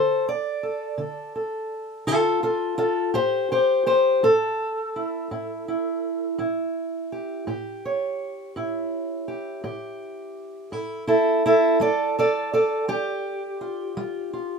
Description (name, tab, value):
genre	acoustic country blues, solo or duo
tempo	56 BPM (dotted quarters)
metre	12/8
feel	straight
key	unclear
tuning	A4 = 441 Hz
part	fingerpicked steel-string acoustic guitar	solo	0.0-14.6 s	A2 to D5	-22 LUFS	equal	none
room	light reverb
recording	minimal, uncompressed stereo recording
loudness	-22 LUFS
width	side -5 dB against mid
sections	0.0-14.6 A section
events	steel-string acoustic guitar solo 0.0-14.6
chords	0.0 D5; 3.1 A7; 11.8 F69